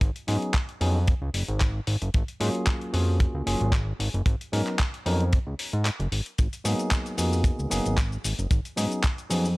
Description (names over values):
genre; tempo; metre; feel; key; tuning
nu-disco, nu disco; 113 BPM; 4/4; swing 54% on 16ths; unclear; A4 = 444 Hz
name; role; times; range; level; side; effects
fat analog bass; bass; 0.0-9.6 s; F#1 to G#2; -26 LUFS; equal; none
dusty soul sampler-style drum kit; drums; 0.0-9.5 s; cabasa, handclaps, hi-hat; -32 LUFS; left 1 dB; studio reverb
kick drum; drums; 0.0-9.2 s; none; -23 LUFS; equal; studio reverb
tine electric piano; accompaniment; 0.3-9.5 s; F#3 to A#4; -30 LUFS; equal; overdrive, sidechain pumping, analog delay
room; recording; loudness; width
small room ambience; none; -23 LUFS; side -22 dB against mid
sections
0.0-9.6 A section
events
break 5.9-6.4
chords
0.0 C#9sus4; 2.1 F#maj9/G#; 4.0 Bmaj9; 8.2 C#9sus4